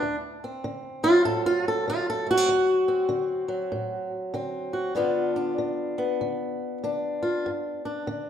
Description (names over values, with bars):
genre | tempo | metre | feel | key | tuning
acoustic country blues, solo or duo | 97 BPM | 4/4 | swing 64% on 8ths | D mixolydian | A4 = 443 Hz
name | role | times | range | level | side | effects
fingerpicked swing-style acoustic guitar | solo | 0.0-8.3 s | D2 to A4 | -24 LUFS | equal | none
room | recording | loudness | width
moderate recital hall reverb, RT60 1.3 s | recorded in a church or concert hall | -24 LUFS | side -9 dB against mid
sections
0.0-8.3 A section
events
steel-string acoustic guitar solo 0.0-8.3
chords
0.0 D7; 5.0 G7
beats
| 0.02 0.64 1.25 1.87 | 2.48 3.10 3.72 4.34 | 4.96 5.57 6.19 6.81 | 7.43 8.05